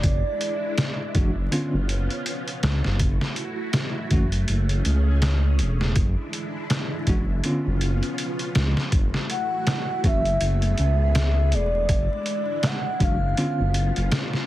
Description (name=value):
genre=trip hop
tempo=81 BPM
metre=4/4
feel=swing 58% on 16ths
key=F# minor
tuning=A4 = 441 Hz
part: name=pure breathy sine lead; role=melody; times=0.0-1.1, 9.3-14.1 s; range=D5 to F#5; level=-27 LUFS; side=equal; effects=wide subtle chorus, tape echo
part: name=string machine, cellos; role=sustained chords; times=0.0-14.5 s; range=G#3 to G#4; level=-32 LUFS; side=equal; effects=phaser, ensemble chorus
part: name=dark detuned saw bass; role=bass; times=0.0-14.1 s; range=E1 to C#2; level=-22 LUFS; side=equal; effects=none
part: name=trip hop sampler-style drum kit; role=drums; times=0.0-14.5 s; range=hi-hat, kick drum, snare drum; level=-24 LUFS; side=equal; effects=none
part: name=bell-like tine electric piano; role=accompaniment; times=1.1-13.6 s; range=D3 to F#4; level=-27 LUFS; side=equal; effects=tremolo, tape echo
room=little or no reverb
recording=dense, heavily limited modern master, vinyl crackle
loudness=-21 LUFS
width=side -15 dB against mid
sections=0.0-14.5 A section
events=none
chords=0.0 E9/F#; 1.5 C#7b9/F#; 3.0 F#m7; 4.5 Amaj7/F#; 6.0 E9/F#; 7.4 C#7b9/F#; 8.9 F#m7; 10.4 Amaj9/F#; 11.9 E9/F#; 13.4 C#7b9/F#